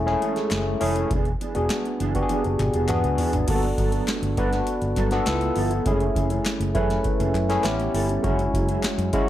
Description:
polished 1980s jazz-funk pop; 101 BPM; 4/4; straight; A4 = 440 Hz
overdriven tine electric piano; accompaniment; 0.0-9.3 s; G#3 to B4; -24 LUFS; left 1 dB; analog chorus
vintage muted fingered electric bass; bass; 0.0-9.1 s; E1 to G2; -26 LUFS; equal
mellow electric guitar; riff; 0.1-9.3 s; E3 to A4; -31 LUFS; right 4 dB; analog chorus
booming analog drum machine; drums; 0.1-9.3 s; crash cymbal, hi-hat, kick drum, snare drum, toms; -27 LUFS; equal
group handclap; percussion; 0.5-9.0 s; -38 LUFS; left 5 dB
light reverb; -21 LUFS; side -12 dB against mid
0.0-3.5 A section; 3.5-9.3 B section
drum fill 2.3-3.5
0.0 F#m9; 1.1 E7; 3.5 Gmaj9; 5.3 C#7alt; 5.9 F#m9; 7.6 A7; 8.2 F#7sus2

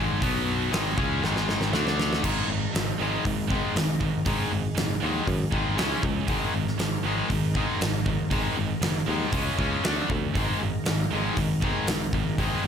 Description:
hard rock; 118 BPM; 4/4; straight; A4 = 440 Hz
distorted electric guitar; riff; 0.0-12.7 s; Ab2 to D4; -30 LUFS; left 13 dB; overdrive
scooped high-gain guitar; riff; 0.0-12.7 s; Ab2 to D4; -30 LUFS; right 9 dB; distortion
picked electric bass; bass; 0.0-12.7 s; Gb1 to Gb2; -30 LUFS; equal
huge arena drum kit; drums; 0.2-12.5 s; crash cymbal, hi-hat, kick drum, snare drum; -28 LUFS; right 1 dB
overdriven tonewheel organ; sustained chords; 2.2-12.7 s; Ab3 to Fb5; -39 LUFS; right 1 dB; slow rotary speaker, chorus vibrato
light reverb; -23 LUFS; side -8 dB against mid
0.0-2.2 A section; 2.2-12.7 B section
drum fill 1.2-2.2
0.2 B5; 0.7 Ab5; 1.7 D5; 2.2 Ab5; 5.8 Db5; 6.3 Ab5; 9.3 Db5; 9.8 D5; 10.4 Ab5

